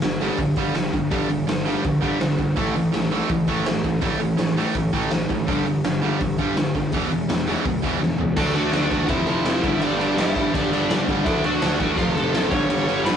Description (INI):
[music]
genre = punk rock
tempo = 166 BPM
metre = 4/4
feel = straight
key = unclear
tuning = A4 = 440 Hz
[part]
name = distorted electric guitar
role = riff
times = 0.0-13.2 s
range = E2 to D4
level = -23 LUFS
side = right 5 dB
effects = overdrive
[part]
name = overdriven semi-hollow guitar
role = riff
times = 0.0-13.2 s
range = F2 to D4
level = -26 LUFS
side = left 7 dB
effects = none
[part]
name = fuzz picked electric bass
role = bass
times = 0.0-13.2 s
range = E1 to E2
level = -29 LUFS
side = left 1 dB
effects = overdrive
[part]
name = raw garage drum kit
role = drums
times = 0.0-13.1 s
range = crash cymbal, hi-hat, kick drum, snare drum, toms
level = -25 LUFS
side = left 1 dB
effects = none
[part]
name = high-gain lead guitar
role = melody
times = 8.4-13.2 s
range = D4 to C#6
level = -26 LUFS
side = left 2 dB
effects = distortion
[sound]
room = light reverb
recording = rough rehearsal-room recording, warm saturation, nothing above 10.9 kHz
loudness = -19 LUFS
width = side -8 dB against mid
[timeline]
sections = 0.0-8.4 A section; 8.4-13.2 B section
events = drum fill 8.0-8.4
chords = 0.0 G5; 2.6 A5; 5.5 G5; 6.9 E; 8.4 D; 9.1 F; 9.6 G; 11.3 D; 12.0 F; 12.5 G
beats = 0.03 0.39 0.75 | 1.12 1.48 1.84 2.21 | 2.57 2.94 3.30 3.66 | 4.02 4.39 4.75 5.11 | 5.47 5.84 6.20 6.56 | 6.92 7.29 7.65 8.01 | 8.37 8.73 9.09 9.45 | 9.81 10.18 10.54 10.89 | 11.26 11.62 11.98 12.34 | 12.70 13.06